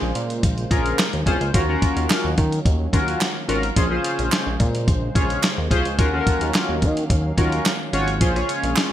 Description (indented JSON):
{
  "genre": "early-eighties boogie funk",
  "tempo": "108 BPM",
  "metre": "4/4",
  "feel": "straight",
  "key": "Eb dorian",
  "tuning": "A4 = 440 Hz",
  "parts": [
    { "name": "chorused polysynth", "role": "accompaniment", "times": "0.0-8.9 s", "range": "Db4 to Db5", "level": "-23 LUFS", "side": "left 2 dB", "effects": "none" },
    { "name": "warm analog pad", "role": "sustained chords", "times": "0.0-8.9 s", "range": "Db3 to F5", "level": "-31 LUFS", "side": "right 1 dB", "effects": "chorus" },
    { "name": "chorused synth bass", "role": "bass", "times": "0.0-8.7 s", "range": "Ab1 to Eb3", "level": "-24 LUFS", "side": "equal", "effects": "none" },
    { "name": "dusty soul sampler-style drum kit", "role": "drums", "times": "0.2-8.9 s", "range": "hi-hat, kick drum, snare drum", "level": "-21 LUFS", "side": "equal", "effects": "gated reverb" },
    { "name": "group handclap", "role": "percussion", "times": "1.0-8.9 s", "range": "none", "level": "-29 LUFS", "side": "right 7 dB", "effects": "none" }
  ],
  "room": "moderate plate reverb, RT60 1.2 s, digital ambience",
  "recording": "bright 1980s-style digital production",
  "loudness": "-18 LUFS",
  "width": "side -11 dB against mid",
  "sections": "0.0-8.9 A section",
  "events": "none",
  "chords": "0.0 Bbm9; 1.5 Ebm9; 3.8 Bbm9; 6.0 Ebm9; 8.2 Bbm7",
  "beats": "0.43 0.99 | 1.54 2.10 2.65 3.21 | 3.77 4.32 4.88 5.43 | 5.99 6.54 7.10 7.65 | 8.21 8.77"
}